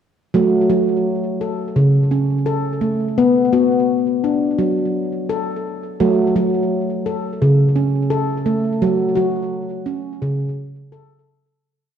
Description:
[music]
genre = world meditative, meditative tuned percussion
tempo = 85 BPM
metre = 4/4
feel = straight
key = F# minor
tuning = A4 = 440 Hz
[part]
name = handpan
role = solo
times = 0.3-11.6 s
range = C#3 to A4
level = -16 LUFS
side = equal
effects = ping-pong delay
[sound]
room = wet concert hall reverb, RT60 2.3 s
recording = worn, warbling old tape, cassette tape, warbly pitch drift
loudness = -16 LUFS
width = side -8 dB against mid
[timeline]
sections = 0.3-11.6 A section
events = fade-out 8.8-11.6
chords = 0.3 F#m; 3.2 Bm; 6.0 F#m

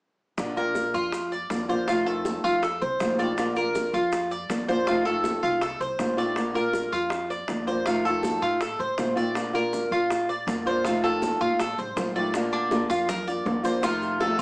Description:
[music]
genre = latin, Cuban son and guajira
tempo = 161 BPM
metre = 4/4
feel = straight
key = Bb major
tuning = A4 = 441 Hz
[part]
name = nylon-string guitar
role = accompaniment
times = 0.4-14.4 s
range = C3 to F4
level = -28 LUFS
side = equal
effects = none
[part]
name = upright bass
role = bass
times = 0.4-14.4 s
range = Bb1 to Bb2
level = -39 LUFS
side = equal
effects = none
[part]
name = bongos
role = percussion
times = 0.4-14.4 s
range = none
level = -34 LUFS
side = left 1 dB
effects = none
[part]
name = congas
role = percussion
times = 0.4-14.4 s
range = none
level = -34 LUFS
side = equal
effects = none
[part]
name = maracas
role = percussion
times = 0.4-14.4 s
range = none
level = -46 LUFS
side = right 1 dB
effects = none
[part]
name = Cuban tres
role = arpeggios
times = 0.6-14.4 s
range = D4 to D5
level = -25 LUFS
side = equal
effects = none
[sound]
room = moderate studio reverb, RT60 0.7 s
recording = small speaker sound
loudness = -23 LUFS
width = side -27 dB against mid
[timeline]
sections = 0.4-12.3 A section; 12.3-14.4 B section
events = drum fill 11.4-12.3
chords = 0.4 Bb; 1.9 F7; 3.4 Bb; 4.9 F7; 6.4 Bb; 7.9 F7; 9.4 Bb; 10.8 F7; 12.3 Bb; 13.8 F7

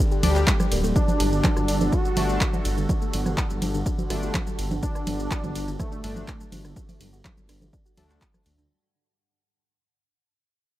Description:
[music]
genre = melodic techno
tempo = 124 BPM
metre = 4/4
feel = straight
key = unclear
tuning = A4 = 440 Hz
[part]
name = sweeping resonant pad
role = sustained chords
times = 0.0-8.7 s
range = G3 to A4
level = -35 LUFS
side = equal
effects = chorus, sidechain pumping
[part]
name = woody wave-folded pluck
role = arpeggios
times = 0.0-8.7 s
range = D3 to G5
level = -34 LUFS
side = equal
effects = analog chorus, sidechain pumping, analog delay
[part]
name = overtone-sweeping drone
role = drone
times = 0.0-8.7 s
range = G2 to D3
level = -41 LUFS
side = left 2 dB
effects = none
[part]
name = punchy analog drum machine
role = drums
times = 0.1-8.7 s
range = congas, handclaps, hi-hat, ride cymbal, rim click, shaker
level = -29 LUFS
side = right 1 dB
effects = none
[part]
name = sync-sweep polysynth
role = stabs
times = 0.2-8.2 s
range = D3 to G4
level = -32 LUFS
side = left 2 dB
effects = chorus, sidechain pumping, analog delay
[part]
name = swelling detuned saw bass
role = bass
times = 0.2-8.7 s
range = D1 to D2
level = -27 LUFS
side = equal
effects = sidechain pumping
[part]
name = electronic kick drum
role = drums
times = 0.5-8.3 s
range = none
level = -25 LUFS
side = equal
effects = none
[part]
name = wide unison lead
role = melody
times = 1.0-6.4 s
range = A3 to F#4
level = -30 LUFS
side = right 1 dB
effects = sidechain pumping, tape echo
[sound]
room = digital ambience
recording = dry, gritty hardware recording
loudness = -22 LUFS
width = side -15 dB against mid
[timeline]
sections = 0.0-8.7 A section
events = drop 0.0-8.7; fade-out 1.0-8.7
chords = 0.0 Gsus2; 1.0 D/G

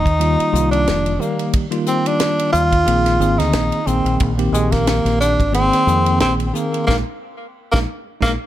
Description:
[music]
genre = electric jazz fusion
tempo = 90 BPM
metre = 4/4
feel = swing 55% on 16ths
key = Bb mixolydian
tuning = A4 = 439 Hz
[part]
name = breathy tenor saxophone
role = melody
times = 0.0-8.3 s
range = Ab3 to F4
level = -18 LUFS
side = equal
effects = plate reverb, analog delay
[part]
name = bell-like tine electric piano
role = accompaniment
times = 0.0-8.3 s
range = Eb3 to Ab4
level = -21 LUFS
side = equal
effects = fast stereo tremolo, plate reverb
[part]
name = deep dub fingered electric bass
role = bass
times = 0.0-8.4 s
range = F1 to F2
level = -20 LUFS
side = equal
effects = none
[part]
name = tight funk drum kit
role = drums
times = 0.1-8.4 s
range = hi-hat, kick drum, ride cymbal, snare drum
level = -22 LUFS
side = equal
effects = none
[sound]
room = light reverb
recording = none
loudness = -15 LUFS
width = side -13 dB against mid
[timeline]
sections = 0.0-8.5 A section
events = band accent 6.9-8.5; tine electric piano fill 8.2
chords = 0.0 F9sus4; 2.9 Bb9sus4

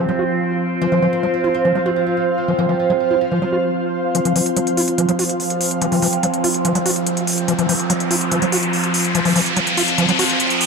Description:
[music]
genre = psychedelic trance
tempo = 144 BPM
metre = 4/4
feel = straight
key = unclear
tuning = A4 = 440 Hz
[part]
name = oud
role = melody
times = 0.0-3.5 s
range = C3 to C4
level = -22 LUFS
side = right 6 dB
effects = phaser, dub echo
[part]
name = overtone-sweeping drone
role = sustained chords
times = 0.0-10.7 s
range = F3 to C4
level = -22 LUFS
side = right 1 dB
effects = chorus, built-in reverb
[part]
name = overdriven acid bass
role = riff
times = 0.0-10.2 s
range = F3 to Gb4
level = -21 LUFS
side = moving between left 5 dB and right 3 dB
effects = auto-pan, dub echo
[part]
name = granular cloud pad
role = texture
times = 0.0-10.7 s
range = F4 to F5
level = -24 LUFS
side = equal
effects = built-in reverb
[part]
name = electronic hi-hat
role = drums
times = 4.1-10.7 s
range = none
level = -21 LUFS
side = equal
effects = overdrive, low-pass filter on hats, low-pass filter on snare
[part]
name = riser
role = sound effects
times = 5.9-10.7 s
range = none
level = -22 LUFS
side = left 1 dB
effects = none
[sound]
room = wet digital room reverb, RT60 1.1 s, digital ambience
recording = dark, warm production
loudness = -15 LUFS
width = side -4 dB against mid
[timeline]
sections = 0.0-4.1 A section; 4.1-10.7 B section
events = build-up 4.1-10.7; filter sweep on acid bass 4.1-10.7; riser 5.9-10.7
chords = 0.0 F5

